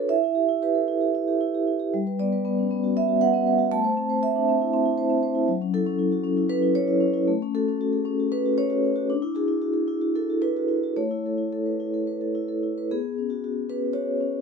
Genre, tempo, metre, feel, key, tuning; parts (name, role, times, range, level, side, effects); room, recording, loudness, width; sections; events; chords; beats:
classical, contemporary piece for solo vibraphone; 232 BPM (eighths); 7/8; rubato; B dorian from 5.5 s; A4 = 440 Hz
vibraphone with soft mallets; solo; 0.0-14.4 s; F#3 to A5; -22 LUFS; right 1 dB
light reverb; dark, warm production; -22 LUFS; side -5 dB against mid
0.0-12.9 A section; 12.9-14.4 B section
0.1 Em; 1.9 Gmaj7; 3.7 Am; 5.5 F#m7; 7.3 A6; 9.1 Dadd9; 11.0 Aadd9; 12.9 Bsus2
| 0.11 0.37 0.63 0.89 1.15 1.41 1.67 | 1.93 2.19 2.44 2.70 2.95 3.21 3.46 | 3.72 3.97 4.23 4.48 4.74 4.99 5.24 | 5.50 5.75 6.01 6.26 6.52 6.77 7.03 | 7.29 7.54 7.80 8.05 8.31 8.57 8.84 | 9.09 9.35 9.62 9.88 10.15 10.41 10.68 | 10.96 11.24 11.52 11.80 12.07 12.35 12.62 | 12.89 13.16 13.43 13.68 13.94 14.20